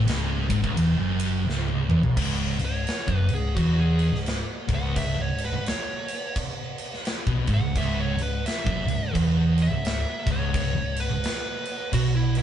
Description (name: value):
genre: stoner and doom metal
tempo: 86 BPM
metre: 4/4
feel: swing 60% on 8ths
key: C# minor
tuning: A4 = 440 Hz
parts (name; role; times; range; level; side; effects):
- thick fuzz guitar; riff; 0.0-12.4 s; C#2 to B2; -26 LUFS; left 2 dB; distortion
- thick fuzz guitar; riff; 0.0-12.4 s; C#2 to B2; -28 LUFS; right 4 dB; distortion
- picked electric bass; bass; 0.0-12.4 s; C#1 to B1; -29 LUFS; equal; overdrive
- big rock drum kit; drums; 0.1-12.4 s; crash cymbal, kick drum, ride cymbal, snare drum, toms; -29 LUFS; equal; none
- fuzz lead guitar; melody; 2.6-12.4 s; E4 to F#5; -32 LUFS; right 1 dB; distortion
room: moderate stone room reverb, RT60 1.4 s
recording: band playing live in one room, nothing above 10.7 kHz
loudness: -22 LUFS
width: side -10 dB against mid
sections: 0.0-2.2 A section; 2.2-12.4 B section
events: drum fill 1.5-2.2; lead electric guitar solo 2.2-12.4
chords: 0.0 C#m